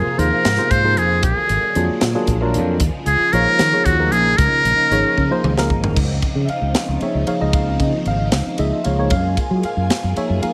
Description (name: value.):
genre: electric jazz fusion.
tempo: 76 BPM (dotted quarters).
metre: 6/8.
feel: straight.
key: Db major.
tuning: A4 = 441 Hz.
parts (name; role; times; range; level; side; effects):
trumpet with metal mute; melody; 0.0-5.4 s; Gb4 to C5; -19 LUFS; equal; slapback echo.
string machine, full ensemble; sustained chords; 0.0-10.5 s; C3 to Ab4; -29 LUFS; equal; phaser, ensemble chorus.
fingered electric bass; bass; 0.0-10.5 s; Ab1 to Gb3; -22 LUFS; equal; none.
tine electric piano; accompaniment; 0.2-10.5 s; F3 to F5; -24 LUFS; equal; analog chorus.
crisp fusion drum kit; drums; 0.2-10.5 s; crash cymbal, hi-hat, kick drum, ride cymbal, snare drum, toms; -24 LUFS; equal; none.
room: light reverb, studio reverb.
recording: none.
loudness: -17 LUFS.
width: mono.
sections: 0.0-6.0 A section; 6.0-10.5 B section.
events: drum fill 5.2-6.0.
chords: 0.0 Ab69; 1.2 Bb7b13; 2.8 Eb9sus4; 4.4 Db69; 9.1 Gbmaj9.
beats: 0.45 | 1.24 2.02 | 2.81 3.60 | 4.39 5.17 | 5.96 6.75 | 7.54 8.33 | 9.12 9.90.